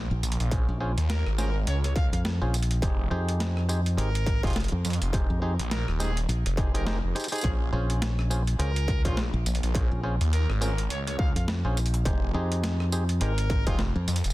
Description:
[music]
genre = glitch hop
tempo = 104 BPM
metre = 4/4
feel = swing 58% on 16ths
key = Bb dorian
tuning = A4 = 441 Hz
[part]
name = phased detuned saw bass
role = bass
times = 0.0-14.3 s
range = Eb1 to F2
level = -27 LUFS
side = equal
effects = phaser
[part]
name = modern bright fingered electric bass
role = bass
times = 0.1-14.1 s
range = Ab1 to F2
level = -26 LUFS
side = equal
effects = none
[part]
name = boom bap sampler-style drum kit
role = drums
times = 0.2-14.3 s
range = hi-hat, rim click, snare drum, tambourine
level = -34 LUFS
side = equal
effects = overdrive
[part]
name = clav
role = stabs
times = 0.5-13.8 s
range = Db4 to C5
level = -35 LUFS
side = equal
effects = sidechain pumping, tape echo
[part]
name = electronic kick drum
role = drums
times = 0.5-13.8 s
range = none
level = -27 LUFS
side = equal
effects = distortion
[part]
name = bright trumpet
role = melody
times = 1.1-13.8 s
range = F4 to F5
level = -38 LUFS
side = equal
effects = tape echo
[sound]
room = digital ambience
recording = dense, heavily limited modern master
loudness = -24 LUFS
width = side -18 dB against mid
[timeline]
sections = 0.0-14.3 A section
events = none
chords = 0.0 Bbm7; 2.8 Fm9; 7.4 Bbm7; 12.1 Fm9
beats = | 0.52 1.09 1.67 2.25 | 2.83 3.40 3.98 4.56 | 5.13 5.71 6.29 6.87 | 7.44 8.02 8.60 9.17 | 9.75 10.33 10.90 11.48 | 12.06 12.63 13.21 13.79

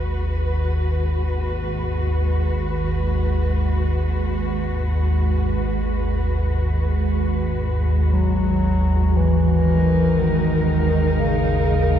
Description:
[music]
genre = dark ambient drone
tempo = free time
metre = none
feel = none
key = G# minor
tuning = A4 = 441 Hz
[part]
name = dark symphonic cello section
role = sustained chords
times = 0.0-12.0 s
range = G#3 to B4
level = -26 LUFS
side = right 1 dB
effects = shimmer reverb
[part]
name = deep rumbling drone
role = drone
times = 0.0-12.0 s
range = G#1 to D#2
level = -20 LUFS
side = equal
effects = built-in reverb, phaser
[part]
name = mellow bass clarinet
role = melody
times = 8.1-12.0 s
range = C#3 to F#3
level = -19 LUFS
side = equal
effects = shimmer reverb, tape echo
[sound]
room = wet cathedral reverb, RT60 6.5 s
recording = in a vast, echoing space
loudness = -18 LUFS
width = side -10 dB against mid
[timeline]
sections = 0.0-12.0 A section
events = fade-in on cello section 0.0-12.0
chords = 0.0 G#m7; 8.1 D#sus4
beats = free time

